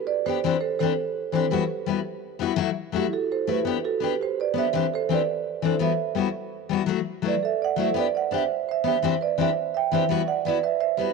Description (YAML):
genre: highlife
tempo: 112 BPM (dotted quarters)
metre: 12/8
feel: straight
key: G major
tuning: A4 = 442 Hz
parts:
  - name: marimba with medium mallets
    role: melody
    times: 0.0-11.1 s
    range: E4 to G5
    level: -25 LUFS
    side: right 10 dB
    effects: none
  - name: picked steel-string acoustic guitar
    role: accompaniment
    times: 0.3-11.1 s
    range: E3 to G4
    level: -26 LUFS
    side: left 11 dB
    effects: none
room: light reverb, small room ambience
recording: 1960s-style stereo with parts hard left and right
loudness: -22 LUFS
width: side -4 dB against mid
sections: 0.0-11.1 A section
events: none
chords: 0.4 Cadd9; 1.5 Emadd9; 2.6 F#m7; 3.7 G; 4.7 Cadd9; 5.8 Emadd9; 6.9 Dadd9; 8.0 G; 9.0 Cadd9; 10.1 Emadd9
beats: 0.44 0.98 | 1.52 2.05 2.59 3.13 | 3.66 4.20 4.74 5.27 | 5.81 6.34 6.88 7.42 | 7.95 8.49 9.02 9.56 | 10.10 10.63